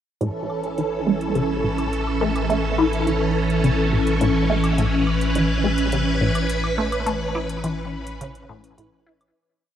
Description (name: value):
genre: ambient, sequencer-driven space music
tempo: 105 BPM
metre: 4/4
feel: straight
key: A major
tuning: A4 = 440 Hz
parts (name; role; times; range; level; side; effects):
- phased string machine; sustained chords; 0.2-9.3 s; E3 to B4; -22 LUFS; right 1 dB; ensemble chorus, phaser
- resonant blip pluck; riff; 0.2-9.2 s; A2 to E4; -24 LUFS; equal; phaser, lush chorus, analog delay
- warm sub bass; bass; 0.2-9.3 s; A1; -26 LUFS; equal; none
- electronic hi-hat and woodblock; percussion; 0.2-9.3 s; none; -36 LUFS; equal; analog delay
room: moderate plate reverb, RT60 2.7 s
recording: none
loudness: -19 LUFS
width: side -10 dB against mid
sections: 0.2-9.4 A section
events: fade-in on drum 0.2-9.4; filter sweep on synth arpeggio sound 0.2-9.4; fade-out 6.3-9.4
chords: 0.2 A